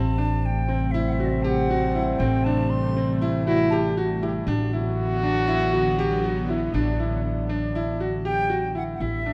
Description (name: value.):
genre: contemporary instrumental, chamber music in an uneven meter.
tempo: 238 BPM (eighths).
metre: 9/8.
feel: straight.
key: A dorian.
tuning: A4 = 444 Hz.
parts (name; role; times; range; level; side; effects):
bright wooden flute; melody; 0.0-3.3, 8.3-9.3 s; D5 to C6; -32 LUFS; equal; none.
warm French horn; second line; 0.0-8.7 s; C4 to G4; -29 LUFS; equal; none.
lush unison pad; sustained chords; 0.0-9.0 s; C3 to B3; -33 LUFS; equal; chorus, tremolo.
clear concert grand piano; arpeggios; 0.0-9.3 s; C4 to G4; -30 LUFS; equal; none.
upright bass; bass; 0.0-9.3 s; A1; -28 LUFS; equal; none.
small celesta; texture; 0.0-0.1, 3.7-4.6 s; F#5 to A5; -40 LUFS; equal; none.
room: moderate recital hall reverb, RT60 1.6 s.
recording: none.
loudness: -24 LUFS.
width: mono.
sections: 0.0-9.0 A section.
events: none.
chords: 0.0 Am7; 4.5 Bm/A.